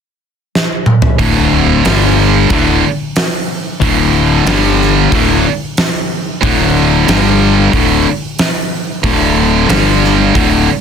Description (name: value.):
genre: hard rock.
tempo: 92 BPM.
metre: 4/4.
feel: straight.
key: unclear.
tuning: A4 = 443 Hz.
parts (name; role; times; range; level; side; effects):
huge arena drum kit; drums; 0.6-10.5 s; hi-hat, kick drum, snare drum, toms; -15 LUFS; right 1 dB; none.
heavy high-gain guitar; riff; 1.2-10.7 s; D2 to G3; -13 LUFS; right 13 dB; distortion.
overdriven semi-hollow guitar; riff; 1.2-10.7 s; D2 to G3; -13 LUFS; left 11 dB; none.
fuzz fingered electric bass; bass; 1.2-10.7 s; D1 to G1; -15 LUFS; equal; overdrive.
room: light reverb.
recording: dense, heavily limited modern master.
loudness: -9 LUFS.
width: side -7 dB against mid.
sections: 0.0-1.2 A section; 1.2-10.8 B section.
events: drum fill 0.5-1.2.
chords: 0.0 N.C.; 1.2 D5; 1.9 G5; 2.5 D5; 4.5 G5; 5.1 D5; 7.1 G5; 7.7 D5; 9.7 G5.